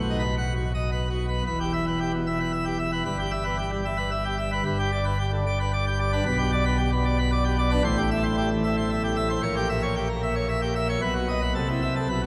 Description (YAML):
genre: classical, organ toccata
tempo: 113 BPM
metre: 3/4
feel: straight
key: E minor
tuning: A4 = 440 Hz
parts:
  - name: pipe organ, plenum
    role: solo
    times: 0.0-12.3 s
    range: E1 to F#5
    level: -26 LUFS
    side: equal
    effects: none
room: wet cathedral reverb, RT60 4.6 s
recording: none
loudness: -26 LUFS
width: mono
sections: 0.0-1.5 A section; 1.5-12.3 B section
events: none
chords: 0.0 B; 1.5 Em; 3.1 Em/G; 4.7 G; 6.3 G/B; 7.8 Am7; 9.4 A#dim7; 11.0 B; 11.6 Am/C